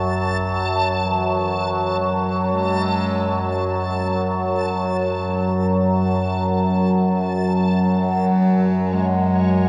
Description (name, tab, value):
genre	ambient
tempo	free time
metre	none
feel	none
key	F# minor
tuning	A4 = 441 Hz
part	breathy bass clarinet	melody	0.0-9.7 s	E3 to G#3	-30 LUFS	equal	diffuse ambient delay
part	overtone-sweeping drone	drone	0.0-9.7 s	F#2 to F#3	-21 LUFS	equal	chorus, built-in reverb
part	backwards swelling texture	texture	0.0-9.7 s	C#5 to A5	-30 LUFS	equal	built-in reverb
room	wet cathedral reverb, RT60 5.2 s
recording	worn, warbling old tape, cassette tape, warbly pitch drift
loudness	-20 LUFS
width	mono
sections	0.0-9.7 A section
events	fade-in on bass clarinet 0.0-9.7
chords	0.0 F#m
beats	free time